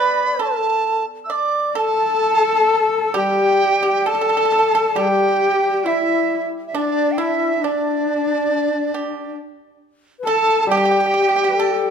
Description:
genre	chinese traditional, Chinese chamber ensemble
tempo	68 BPM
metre	4/4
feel	rubato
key	unclear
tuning	A4 = 441 Hz
part	large dizi	melody	0.0-11.9 s	D5 to E6	-19 LUFS	right 5 dB	none
part	bright reedy xiao	second line	0.0-11.9 s	D4 to E5	-23 LUFS	left 7 dB	none
part	pipa	second line	0.0-11.9 s	D4 to D5	-25 LUFS	right 5 dB	none
part	hammered dulcimer	accompaniment	0.0-11.9 s	G3	-27 LUFS	left 1 dB	none
part	rich horsehead fiddle	second line	1.8-11.9 s	D4 to A4	-21 LUFS	left 3 dB	none
room	moderate recital hall reverb, RT60 1.6 s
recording	minimal, uncompressed stereo recording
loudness	-16 LUFS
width	side -7 dB against mid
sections	0.0-3.2 A section; 3.2-11.9 B section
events	none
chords	none

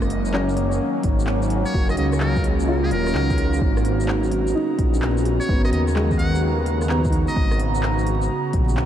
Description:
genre	future garage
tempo	128 BPM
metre	4/4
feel	swing 66% on 16ths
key	G# dorian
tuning	A4 = 443 Hz
part	dark upright piano	accompaniment	0.0-8.9 s	G#3 to F#4	-28 LUFS	left 1 dB	vintage 12-bit sampler grit, sidechain pumping, ping-pong delay
part	warbly tape-like pad	sustained chords	0.0-8.9 s	C#3 to A#5	-24 LUFS	right 1 dB	chorus, built-in reverb, phaser, sidechain pumping
part	swelling detuned saw bass	bass	0.0-8.9 s	D#1 to D#2	-22 LUFS	equal	tube saturation, sidechain pumping
part	organic electronic drum kit	drums	0.0-8.9 s	handclaps, hi-hat, rim click, shaker	-34 LUFS	equal	overdrive
part	electronic kick drum	drums	1.0-8.7 s	none	-22 LUFS	equal	overdrive
part	trumpet with metal mute	melody	1.7-7.6 s	G#4 to F#5	-31 LUFS	equal	vintage 12-bit sampler grit, analog delay
room	moderate cathedral reverb, RT60 4.9 s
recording	dreamy mix soaked in reverb, vinyl crackle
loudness	-18 LUFS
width	side -10 dB against mid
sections	0.0-8.9 A section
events	none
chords	0.0 F#6; 3.6 G#m11

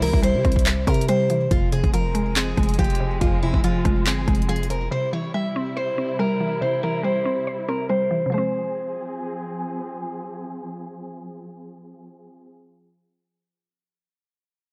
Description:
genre	hip hop, trap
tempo	141 BPM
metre	4/4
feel	half-time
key	F harmonic minor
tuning	A4 = 440 Hz
part	picked acoustic archtop guitar	melody	0.0-9.6 s	E4 to E5	-28 LUFS	equal	low-pass filter
part	mallet-like synth pluck	accompaniment	0.0-13.2 s	F2 to C5	-28 LUFS	equal	chorus, low-pass filter
part	dark symphonic string section	sustained chords	0.0-12.5 s	C3 to Ab4	-34 LUFS	equal	low-pass filter
part	growling 808-style bass	bass	0.0-4.9 s	F1 to C3	-27 LUFS	equal	none
part	deep house drum kit	drums	0.0-4.8 s	handclaps, hi-hat, kick drum	-24 LUFS	equal	none
room	little or no reverb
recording	dark, warm production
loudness	-23 LUFS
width	mono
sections	0.0-1.5 A section; 1.5-8.3 B section; 8.3-11.7 C section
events	none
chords	0.0 C; 1.5 Fm; 4.9 C; 8.3 Fm

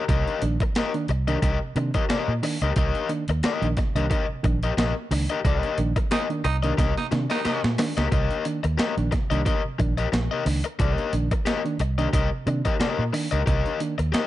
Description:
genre	funk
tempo	90 BPM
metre	4/4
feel	swing 56% on 16ths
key	C minor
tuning	A4 = 440 Hz
part	overdriven electric guitar	accompaniment	0.0-14.3 s	G4 to Eb5	-27 LUFS	left 6 dB	none
part	reed electric piano	stabs	0.1-13.9 s	C3 to D4	-31 LUFS	right 3 dB	none
part	vintage muted fingered electric bass	bass	0.1-14.2 s	Bb1 to C3	-25 LUFS	right 1 dB	none
part	breakbeat sampler-style drum kit	drums	0.1-14.3 s	hi-hat, kick drum, snare drum	-26 LUFS	right 1 dB	overdrive
part	raspy baritone saxophone	second line	6.1-7.7 s	Eb4	-30 LUFS	right 6 dB	none
room	digital ambience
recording	nothing above 10.8 kHz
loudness	-22 LUFS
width	side -14 dB against mid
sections	0.0-14.3 A section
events	band accent 5.4-8.1; drum fill 6.8-8.1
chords	0.0 Cm7

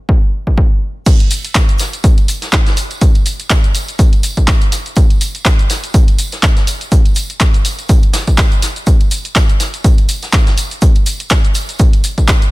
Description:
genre	house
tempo	123 BPM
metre	4/4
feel	swing 57% on 16ths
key	none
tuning	none
part	electronic kick drum	drums	0.1-12.4 s	none	-10 LUFS	equal	none
part	punchy analog drum machine	drums	1.1-12.5 s	crash cymbal, handclaps, hi-hat, shaker	-18 LUFS	equal	none
part	vintage brush drum kit	drums	1.1-12.5 s	hi-hat, shaker, snare drum	-26 LUFS	equal	none
part	tambourine	percussion	1.1-12.5 s	none	-29 LUFS	right 2 dB	none
room	small room ambience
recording	none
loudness	-10 LUFS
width	side -20 dB against mid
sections	0.0-1.1 A section; 1.1-12.5 B section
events	drop 1.1-12.5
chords	none

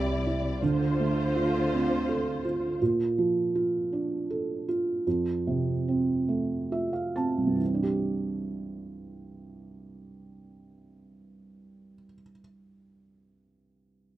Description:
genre	pop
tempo	43-55 BPM (dotted quarters)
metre	6/8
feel	straight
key	C mixolydian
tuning	A4 = 440 Hz
part	felt-muted upright piano	accompaniment	0.0-14.2 s	C2 to A5	-27 LUFS	right 2 dB	none
part	warm symphonic string section	sustained chords	0.0-2.8 s	C2 to D5	-29 LUFS	left 1 dB	none
room	moderate studio reverb, RT60 0.6 s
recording	rough home demo mix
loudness	-25 LUFS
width	side -14 dB against mid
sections	0.0-7.6 A section; 7.6-13.2 B section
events	slowing down 2.8-7.6; felt piano fill 6.3-7.6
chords	0.0 Cadd9; 0.6 Dm7; 2.8 Bbmaj7; 5.1 F; 7.6 Cadd9

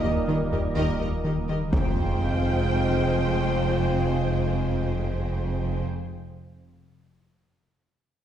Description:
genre	cinematic, hybrid orchestral and electronic film score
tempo	124 BPM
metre	4/4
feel	straight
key	F minor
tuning	A4 = 441 Hz
part	warm studio violin section	melody	0.0-5.8 s	C5 to Eb5	-35 LUFS	left 3 dB	none
part	rich symphonic violin section	second line	0.0-5.8 s	Ab4 to Bb4	-42 LUFS	left 2 dB	none
part	warm symphonic viola section	accompaniment	0.0-5.8 s	G4 to G5	-36 LUFS	right 2 dB	none
part	dark French horn section	sustained chords	0.0-5.8 s	Bb3 to F4	-31 LUFS	left 2 dB	none
part	dark trombone section	sustained chords	0.0-5.8 s	Ab2 to Ab3	-35 LUFS	right 3 dB	none
part	phased analog pad	sustained chords	0.0-5.8 s	G3 to G5	-33 LUFS	right 1 dB	phaser, chorus
part	rubbery square bass	riff	0.0-1.6 s	Eb2 to Eb3	-29 LUFS	left 1 dB	none
part	dark symphonic cello section	bass	0.0-5.8 s	F2 to Eb3	-31 LUFS	right 2 dB	none
part	warm sub bass	bass	0.0-5.8 s	Eb1 to F1	-34 LUFS	equal	none
part	warm symphonic double bass section	bass	0.0-5.8 s	F1 to Eb2	-29 LUFS	right 2 dB	none
part	taiko ensemble	drums	0.0-2.7 s	none	-31 LUFS	equal	none
part	impact	sound effects	1.7-3.7 s	none	-32 LUFS	equal	none
room	wet recital hall reverb, RT60 1.5 s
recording	heard from further back in the room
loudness	-23 LUFS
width	side -10 dB against mid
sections	0.0-1.7 A section; 1.7-5.6 B section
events	impact 1.7-3.7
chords	0.0 Eb; 1.7 Fmadd9

